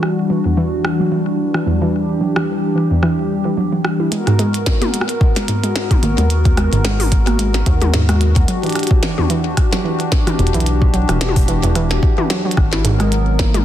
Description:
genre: IDM.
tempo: 110 BPM.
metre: 4/4.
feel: swing 56% on 16ths.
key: unclear.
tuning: A4 = 440 Hz.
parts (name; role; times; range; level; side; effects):
hollow soft pad; sustained chords; 0.0-13.6 s; E3 to A#4; -20 LUFS; left 2 dB; chorus.
glitchy drum kit; drums; 0.0-13.6 s; hi-hat, rim click, snare drum, toms; -22 LUFS; left 1 dB; soft clipping on snare, small room ambience, ping-pong delay.
warbly dusty pluck; arpeggios; 0.3-13.6 s; E2 to E4; -19 LUFS; right 2 dB; chorus, dub echo.
electronic kick drum; drums; 4.7-13.5 s; none; -15 LUFS; equal; small room ambience.
rubbery square bass; bass; 6.0-13.6 s; E1 to D#2; -17 LUFS; equal; none.
room: light reverb, digital ambience.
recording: dense, heavily limited modern master.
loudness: -14 LUFS.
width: side -11 dB against mid.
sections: 0.0-4.1 A section; 4.1-13.6 B section.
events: none.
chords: 0.0 Em9; 4.1 G#m9; 8.5 Em9; 12.8 G#m9.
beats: 0.30 0.85 1.39 | 1.94 2.48 3.03 3.57 | 4.12 4.66 5.21 5.75 | 6.30 6.85 7.39 7.94 | 8.48 9.03 9.57 10.12 | 10.66 11.21 11.76 12.30 | 12.85 13.39.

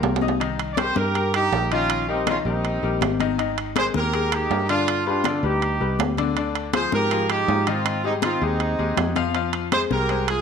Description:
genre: latin, salsa.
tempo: 161 BPM.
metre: 4/4.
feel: straight.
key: C minor.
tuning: A4 = 439 Hz.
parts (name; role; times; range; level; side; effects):
bright horn section; melody; 0.0-10.4 s; G3 to D5; -23 LUFS; right 2 dB; none.
bright upright piano; accompaniment; 0.0-10.4 s; D3 to Eb6; -27 LUFS; left 9 dB; none.
fingered electric bass; bass; 0.0-10.4 s; Ab1 to Ab2; -27 LUFS; right 1 dB; none.
congas; percussion; 0.0-10.4 s; none; -28 LUFS; left 11 dB; none.
timbales; percussion; 0.0-10.4 s; none; -27 LUFS; right 12 dB; none.
room: moderate echo chamber reverb, RT60 1.3 s, studio ambience.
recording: 1960s-style stereo with parts hard left and right.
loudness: -20 LUFS.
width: side -6 dB against mid.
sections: 0.4-10.4 A section.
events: drum fill 0.0-0.4.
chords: 0.4 Cm7; 1.9 Eb/Bb; 3.4 Absus2; 4.9 G; 6.4 Dm7b5; 7.9 Abmaj7; 9.3 Fmadd9.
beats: 0.03 | 0.40 0.78 1.15 1.52 | 1.90 2.27 2.64 3.01 | 3.39 3.76 4.13 4.50 | 4.88 5.25 5.62 5.99 | 6.37 6.74 7.11 7.48 | 7.86 8.23 8.60 8.97 | 9.35 9.72 10.09.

